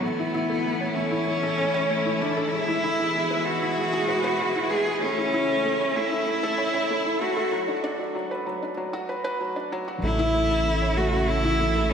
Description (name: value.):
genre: piano and strings electronica.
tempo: 96 BPM.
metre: 4/4.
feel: straight.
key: A major.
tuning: A4 = 440 Hz.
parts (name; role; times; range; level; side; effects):
warm cello; melody; 0.0-11.9 s; B3 to G#4; -25 LUFS; equal; low-pass filter, diffuse ambient delay.
clear symphonic string section; sustained chords; 0.0-11.9 s; B2 to E4; -31 LUFS; left 1 dB; low-pass filter.
felt-muted upright piano; riff; 0.0-11.9 s; F#3 to E5; -27 LUFS; equal; diffuse ambient delay.
round analog bass; bass; 10.0-11.9 s; A1; -26 LUFS; equal; none.
room: wet lush hall reverb, RT60 2.9 s.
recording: dreamy mix soaked in reverb, high-pass filter.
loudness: -22 LUFS.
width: side -7 dB against mid.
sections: 0.0-10.0 A section; 10.0-11.9 B section.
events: build-up 0.0-10.0; break 7.5-10.0; drop 10.0-11.9.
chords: 0.0 A; 2.5 E; 5.0 A; 7.5 Bm; 10.0 A.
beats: | 0.03 0.65 1.28 1.90 | 2.53 3.15 3.78 4.40 | 5.03 5.65 6.28 6.90 | 7.53 8.15 8.78 9.40 | 10.03 10.65 11.28 11.90.